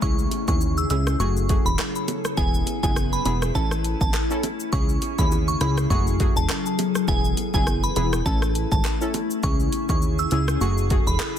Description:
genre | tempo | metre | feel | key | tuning
dancehall | 102 BPM | 4/4 | swing 56% on 16ths | unclear | A4 = 440 Hz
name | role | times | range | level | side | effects
glassy synth bell | melody | 0.0-11.2 s | G#5 to E6 | -29 LUFS | right 1 dB | chorus, tremolo, ping-pong delay
synth brass stab | accompaniment | 0.0-11.1 s | A3 to A4 | -29 LUFS | left 1 dB | chorus
glassy FM pad | sustained chords | 0.0-11.4 s | C#4 to G#4 | -28 LUFS | left 3 dB | ensemble chorus, built-in reverb
plucky analog bass | bass | 0.0-11.2 s | E1 to D#2 | -24 LUFS | equal | none
deep house drum kit | drums | 0.0-11.4 s | handclaps, hi-hat, kick drum, rim click, shaker | -24 LUFS | equal | soft clipping on snare
downlifter | sound effects | 0.0-2.4 s | none | -46 LUFS | right 1 dB | none
bongos | percussion | 0.3-10.5 s | none | -36 LUFS | right 8 dB | none
room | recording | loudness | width
digital ambience | dense, heavily limited modern master | -20 LUFS | side -9 dB against mid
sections
0.0-11.4 A section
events
none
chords
0.0 C#m; 1.2 F#madd9; 2.4 E; 3.6 A; 4.7 C#m; 5.9 F#madd9; 7.1 E; 8.3 A; 9.4 C#m; 10.6 F#madd9

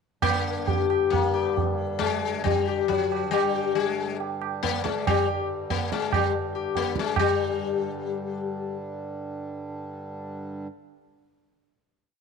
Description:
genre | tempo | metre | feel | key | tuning
indian classical, Hindustani | 134-156 BPM | 4/4 | straight | G raga todi | A4 = 440 Hz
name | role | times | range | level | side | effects
sitar | melody | 0.2-8.8 s | F#3 to G4 | -25 LUFS | left 10 dB | none
pedal harmonium | drone | 0.2-10.7 s | G2 to D3 | -35 LUFS | right 2 dB | none
tabla | percussion | 0.2-7.3 s | none | -28 LUFS | right 7 dB | none
room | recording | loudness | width
light reverb, small room ambience | 1960s-style stereo with parts hard left and right | -24 LUFS | side -5 dB against mid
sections
0.2-7.2 theme; 7.2-10.4 final chord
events
speeding up 0.2-10.4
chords
none

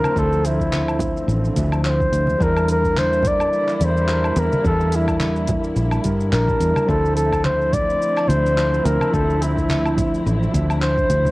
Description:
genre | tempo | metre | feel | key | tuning
sunset chillout | 107 BPM | 4/4 | swing 56% on 16ths | D minor | A4 = 440 Hz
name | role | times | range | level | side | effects
mellow flugelhorn | melody | 0.0-11.3 s | E4 to D5 | -21 LUFS | equal | cassette tape, analog delay, plate reverb
overdriven tine electric piano | accompaniment | 0.0-11.3 s | F3 to A5 | -25 LUFS | equal | auto-pan, cassette tape, plate reverb
muted studio string section | sustained chords | 0.0-11.3 s | D3 to E4 | -29 LUFS | equal | vintage 12-bit sampler grit, cassette tape, plate reverb
deep house drum kit | drums | 0.0-11.3 s | handclaps, hi-hat, shaker, woodblock | -29 LUFS | equal | overdrive, cassette tape
congas | percussion | 0.0-11.3 s | none | -27 LUFS | right 1 dB | none
fingered electric bass | bass | 0.2-11.3 s | A1 to G2 | -21 LUFS | equal | tube saturation
electronic kick drum | drums | 0.2-11.1 s | none | -26 LUFS | equal | overdrive, cassette tape
room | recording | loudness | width
moderate booth ambience, RT60 0.2 s | home recording on cassette | -16 LUFS | side -20 dB against mid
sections
0.0-11.3 A section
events
none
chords
0.0 Dm9; 2.4 Em7b5; 6.9 Dm9

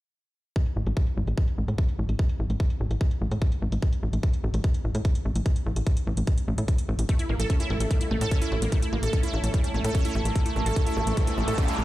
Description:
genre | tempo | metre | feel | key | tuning
psychedelic trance | 147 BPM | 4/4 | straight | A major | A4 = 443 Hz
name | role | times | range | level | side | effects
electronic hi-hat | drums | 0.6-11.8 s | none | -41 LUFS | equal | low-pass filter on hats, low-pass filter on room
electronic kick drum | drums | 0.6-11.7 s | none | -23 LUFS | equal | none
tight sequencer bass | bass | 0.8-11.8 s | A1 to A2 | -25 LUFS | equal | tube saturation
overtone-sweeping drone | sustained chords | 7.4-11.8 s | A3 to A4 | -33 LUFS | right 2 dB | chorus, built-in reverb, sidechain pumping
wide unison pluck | riff | 7.1-11.8 s | G3 to A4 | -31 LUFS | right 1 dB | auto-pan, sidechain pumping, dub echo
vowel-sweep wobble bass | second line | 7.7-11.8 s | G3 to C#4 | -40 LUFS | right 2 dB | analog chorus, cassette tape, sidechain pumping, high-pass filter, dub echo
riser | sound effects | 10.7-11.8 s | none | -34 LUFS | equal | none
room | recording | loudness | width
little or no reverb | played on a big sound system in a bare room, large studio reverb | -23 LUFS | side -16 dB against mid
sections
0.6-11.8 A section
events
riser 10.7-11.8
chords
0.6 A5

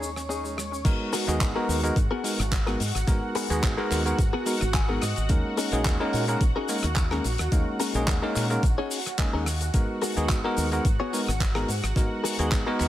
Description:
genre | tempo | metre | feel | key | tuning
nu-disco, nu disco | 108 BPM | 4/4 | swing 54% on 16ths | G# minor | A4 = 440 Hz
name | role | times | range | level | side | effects
bell-like tine electric piano | accompaniment | 0.0-12.9 s | G#3 to A#4 | -29 LUFS | equal | sidechain pumping, dub echo
lush unison pad | sustained chords | 0.0-12.9 s | F#4 to C#6 | -35 LUFS | right 1 dB | chorus, phaser, sidechain pumping
analog pluck | arpeggios | 0.0-0.8 s | G#3 to G#4 | -40 LUFS | right 2 dB | chorus, sidechain pumping, digital delay
direct-recorded clean electric guitar | riff | 0.0-12.9 s | B3 to G#5 | -32 LUFS | left 4 dB | wide subtle chorus, dub echo
fingered electric bass with an envelope filter | bass | 0.0-12.9 s | G#1 to A#2 | -29 LUFS | equal | sidechain pumping
damped 70s drum kit | drums | 0.0-12.9 s | crash cymbal, handclaps, hi-hat, rim click, shaker | -31 LUFS | left 1 dB | none
electronic kick drum | drums | 0.8-12.6 s | none | -24 LUFS | equal | overdrive
room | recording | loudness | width
studio ambience | none | -23 LUFS | side -13 dB against mid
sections
0.9-12.9 A section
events
drop 0.9-12.9; clean electric guitar fill 4.5-5.3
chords
0.0 D#7sus4; 0.9 G#m9; 5.3 D#7sus4; 9.7 G#m9

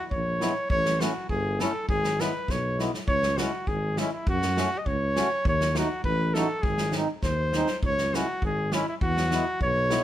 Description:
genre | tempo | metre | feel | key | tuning
alpine folk, alpine dance band | 101 BPM | 2/4 | straight | C# minor | A4 = 440 Hz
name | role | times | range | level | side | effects
clear flugelhorn | melody | 0.0-10.0 s | E4 to D#5 | -27 LUFS | equal | none
mellow tuba | bass | 0.1-10.0 s | G1 to F#2 | -29 LUFS | equal | none
natural country drum kit | drums | 0.1-10.0 s | kick drum, snare drum | -30 LUFS | equal | none
mellow accordion | accompaniment | 0.4-10.0 s | G#3 to F#4 | -31 LUFS | equal | none
room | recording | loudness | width
light reverb | band playing live in one room | -24 LUFS | side -12 dB against mid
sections
0.0-10.0 A section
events
drum fill 2.5-3.1, 7.2-7.8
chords
0.0 E; 0.7 A; 1.9 E/G#; 3.1 C#m; 4.3 F#m; 5.4 D#dim; 6.6 G#; 7.8 C#m; 9.0 E

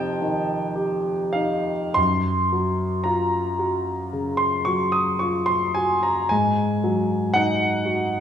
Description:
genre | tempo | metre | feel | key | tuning
classical, impressionist solo piano | 47-60 BPM | 4/4 | rubato | unclear | A4 = 440 Hz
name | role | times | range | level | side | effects
clear grand piano | solo | 0.0-8.2 s | Gb2 to Eb6 | -20 LUFS | equal | none
room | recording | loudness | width
wet recital hall reverb, RT60 1.4 s | heard from further back in the room | -20 LUFS | side -8 dB against mid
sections
0.0-8.2 A section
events
none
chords
0.0 Fsus2; 2.0 Gbmaj7; 6.3 Ab5

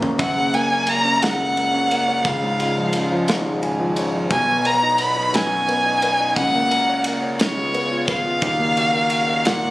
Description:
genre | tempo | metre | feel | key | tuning
six-eight pop ballad | 58 BPM (dotted quarters) | 6/8 | straight | F# major | A4 = 440 Hz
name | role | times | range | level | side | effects
warm concert grand piano | accompaniment | 0.0-9.7 s | F#1 to G#5 | -22 LUFS | equal | none
modern studio drum kit | drums | 0.0-9.6 s | kick drum, ride cymbal, snare drum, toms | -26 LUFS | equal | none
warm violin | melody | 0.2-9.7 s | C#5 to B5 | -19 LUFS | equal | none
warm analog pad | sustained chords | 0.2-9.7 s | D#2 to F#4 | -30 LUFS | equal | chorus
room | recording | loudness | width
light reverb, small room ambience | recorded on a phone in the room, studio reverb, compression | -17 LUFS | side -18 dB against mid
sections
0.0-9.7 A section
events
drum fill 0.0; grand piano fill 3.3-4.3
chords
0.0 F#; 2.2 C#; 4.3 G#m7/B; 6.4 F#/C#; 7.4 C#7; 8.4 D#m7

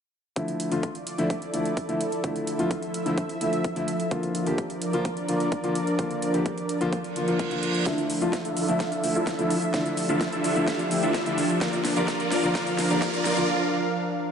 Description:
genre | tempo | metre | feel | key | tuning
EDM, festival progressive house | 128 BPM | 4/4 | straight | D minor | A4 = 441 Hz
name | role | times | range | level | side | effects
warm concert grand piano | accompaniment | 0.4-13.5 s | D3 to G4 | -28 LUFS | left 1 dB | sidechain pumping, diffuse ambient delay
lush unison pad | sustained chords | 1.0-14.3 s | F3 to F5 | -29 LUFS | right 1 dB | chorus, sidechain pumping
big-room dance drum kit | drums | 0.4-13.5 s | hi-hat, shaker, snare drum | -34 LUFS | right 1 dB | overdrive, high-pass filter on hats, small room ambience, high-pass filter on snare, high-pass filter on perc
electronic kick drum | drums | 0.4-13.1 s | none | -33 LUFS | equal | overdrive, high-pass filter on kick, small room ambience
reverse cymbal and riser | sound effects | 7.1-13.5 s | none | -37 LUFS | right 4 dB | none
dense compressed supersaw | riff | 7.9-13.5 s | D4 to F5 | -27 LUFS | right 1 dB | cassette tape, sidechain pumping, low-pass filter, diffuse ambient delay
room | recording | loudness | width
wet lush hall reverb, RT60 1.8 s, digital ambience | dreamy mix soaked in reverb, nothing above 10.9 kHz | -23 LUFS | side -7 dB against mid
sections
0.4-7.9 A section; 7.9-14.3 B section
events
reverse cymbal 7.1-7.9; build-up 7.9-14.3; drum fill 7.9-13.5; filter sweep on supersaw synth 7.9-14.3; break 13.5-14.3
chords
0.4 Dmadd9; 4.1 Bb; 7.9 Dmadd9; 11.6 Bb

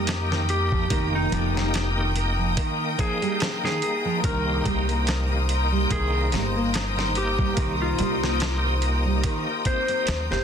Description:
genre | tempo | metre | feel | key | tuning
trip hop | 72 BPM | 4/4 | swing 56% on 16ths | unclear | A4 = 439 Hz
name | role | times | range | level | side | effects
bright tonewheel organ | accompaniment | 0.0-10.4 s | Bb3 to G5 | -29 LUFS | equal | chorus vibrato, slow rotary speaker, tremolo, tape echo
rich studio string section | sustained chords | 0.0-10.4 s | C5 to Eb6 | -32 LUFS | left 7 dB | none
nylon-string guitar | arpeggios | 0.0-10.4 s | Eb3 to G4 | -30 LUFS | right 4 dB | ping-pong delay
upright bass | bass | 0.0-10.4 s | F1 to F2 | -26 LUFS | equal | tube saturation
boom bap sampler-style drum kit | drums | 0.1-10.4 s | hi-hat, kick drum, snare drum | -28 LUFS | equal | soft clipping on snare
clean lap steel guitar | melody | 0.5-10.4 s | Eb4 to C5 | -30 LUFS | left 2 dB | tape echo
room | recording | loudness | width
small room reverb | dense, heavily limited modern master | -21 LUFS | side -8 dB against mid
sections
0.0-10.4 A section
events
none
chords
0.0 F9sus4; 4.2 Cm7

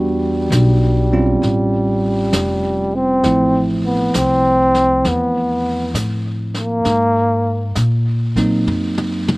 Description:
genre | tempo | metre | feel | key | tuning
jazz ballad | 66 BPM | 4/4 | swing 66% on 8ths | unclear | A4 = 437 Hz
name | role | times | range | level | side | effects
warm trombone | melody | 0.0-7.7 s | G3 to C4 | -17 LUFS | equal | none
bell-like tine electric piano | accompaniment | 0.0-9.4 s | F3 to F#4 | -20 LUFS | right 1 dB | none
upright bass | bass | 0.0-9.4 s | E#1 to Bb2 | -19 LUFS | equal | none
vintage brush drum kit | drums | 0.5-9.4 s | brushed snare drum, hi-hat, kick drum, snare drum, toms | -25 LUFS | equal | none
room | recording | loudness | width
little or no reverb | recorded outdoors, with no room sound | -14 LUFS | side -22 dB against mid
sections
0.0-9.4 A section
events
drum fill 8.7-9.4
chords
0.0 Em9; 1.4 A7alt; 3.2 Amadd9; 6.8 Ab9

